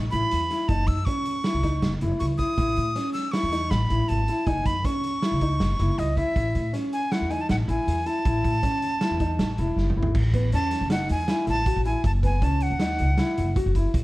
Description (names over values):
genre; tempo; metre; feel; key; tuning
progressive instrumental, band music in an uneven meter; 159 BPM; 5/4; straight; A lydian; A4 = 444 Hz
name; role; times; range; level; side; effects
upright bass; bass; 0.0-14.0 s; E1 to A2; -25 LUFS; equal; none
breathy bright jazz flute; melody; 0.1-13.6 s; D#5 to E6; -28 LUFS; equal; none
warm concert grand piano; arpeggios; 0.1-13.9 s; B3 to F#4; -29 LUFS; left 1 dB; none
raw garage drum kit; drums; 0.1-14.0 s; crash cymbal, hi-hat, kick drum, snare drum, toms; -29 LUFS; right 1 dB; none
room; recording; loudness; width
light reverb; dark, warm production; -22 LUFS; side -18 dB against mid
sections
0.0-10.1 A section; 10.1-14.0 B section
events
drum fill 9.8-10.1; flute solo 10.1-14.0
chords
0.0 A5; 0.7 F#5; 2.6 A; 4.5 F#5; 6.4 A; 12.0 F#5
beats
0.32 | 0.69 1.07 1.45 1.83 2.21 | 2.58 2.96 3.34 3.72 4.09 | 4.47 4.85 5.23 5.60 5.98 | 6.36 6.74 7.12 7.50 7.87 | 8.25 8.63 9.01 9.39 9.77 | 10.15 10.53 10.91 11.29 11.66 | 12.04 12.42 12.80 13.18 13.56 | 13.94